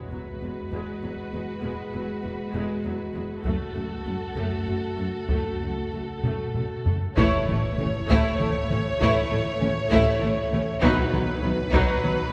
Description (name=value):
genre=cinematic, epic orchestral film score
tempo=99 BPM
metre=3/4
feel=straight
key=unclear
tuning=A4 = 442 Hz
part: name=rich symphonic violin section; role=melody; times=0.0-12.3 s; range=A4 to C#5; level=-35 LUFS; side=equal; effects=none
part: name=rich symphonic violin section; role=second line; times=0.0-12.1 s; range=A3 to F#4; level=-34 LUFS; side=equal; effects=none
part: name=rich symphonic viola section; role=accompaniment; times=0.0-12.1 s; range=F#3 to A3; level=-34 LUFS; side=equal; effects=none
part: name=dark French horn section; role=sustained chords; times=0.0-11.0 s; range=E3 to F#4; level=-36 LUFS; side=equal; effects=none
part: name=timpani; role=percussion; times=0.0-0.7, 10.8-11.7 s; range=E2 to B2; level=-37 LUFS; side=equal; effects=none
part: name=rich symphonic cello section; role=bass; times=0.1-12.1 s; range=E2 to B2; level=-34 LUFS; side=equal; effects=none
part: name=rich symphonic double bass section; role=bass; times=0.1-12.1 s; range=E1 to B1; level=-35 LUFS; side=equal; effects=none
part: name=taiko ensemble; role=drums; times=3.4-12.3 s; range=none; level=-31 LUFS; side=equal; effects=none
part: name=mellow trumpet section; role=stabs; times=7.2-11.0 s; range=B4 to C#5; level=-35 LUFS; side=equal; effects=none
part: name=impact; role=sound effects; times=7.3-9.0 s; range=none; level=-42 LUFS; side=equal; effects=none
room=wet cathedral reverb, RT60 4.3 s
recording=recorded in a church or concert hall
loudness=-26 LUFS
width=mono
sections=0.0-7.2 A section; 7.2-12.3 B section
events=drum fill 6.2-7.2; impact 7.2-9.0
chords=0.0 Eadd9; 3.5 F#m; 7.2 A; 10.8 B